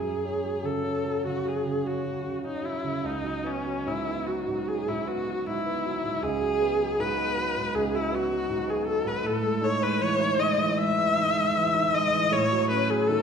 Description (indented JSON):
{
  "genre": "classical, impressionist duo for viola and grand piano",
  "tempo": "78 BPM",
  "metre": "4/4",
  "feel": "uneven beats, rubato",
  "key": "unclear",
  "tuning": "A4 = 440 Hz",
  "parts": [
    { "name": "warm viola", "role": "melody", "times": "0.0-13.2 s", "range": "C#4 to E5", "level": "-26 LUFS", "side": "left 1 dB", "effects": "none" },
    { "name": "warm baby grand piano", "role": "accompaniment", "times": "0.0-13.2 s", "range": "C#2 to D#4", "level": "-29 LUFS", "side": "right 3 dB", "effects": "none" }
  ],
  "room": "wet recital hall reverb, RT60 1.5 s",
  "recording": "recorded in a church or concert hall",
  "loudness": "-24 LUFS",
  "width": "side -6 dB against mid",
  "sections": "0.0-13.2 A section",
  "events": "none",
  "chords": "0.0 F#sus2; 3.0 C#7sus4; 9.2 A5; 12.3 Amaj13"
}